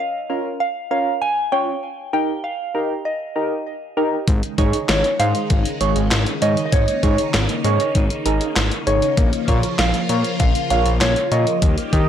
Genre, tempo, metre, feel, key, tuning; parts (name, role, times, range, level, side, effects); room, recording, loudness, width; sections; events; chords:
synth-pop; 98 BPM; 4/4; straight; Bb minor; A4 = 441 Hz
soft synth bell; melody; 0.0-12.1 s; Db5 to Ab5; -23 LUFS; equal; chorus, phaser, tape echo
soft electric-piano-like synth keys; accompaniment; 0.3-12.1 s; Db4 to Eb5; -23 LUFS; right 2 dB; chorus, phaser
phased string machine; sustained chords; 4.3-12.1 s; Db3 to G4; -25 LUFS; equal; ensemble chorus, phaser
fat analog bass; bass; 4.3-12.1 s; Ab1 to Eb3; -20 LUFS; left 1 dB; tube saturation
gated 80s digital drum machine; drums; 4.3-12.1 s; handclaps, hi-hat, kick drum, snare drum; -20 LUFS; left 1 dB; gated reverb, gated reverb snare
digital ambience; dry, gritty hardware recording, transformer saturation; -17 LUFS; side -9 dB against mid
0.0-12.1 A section
0.0 Bbm; 1.8 Eb; 4.3 Absus4; 9.2 Bbm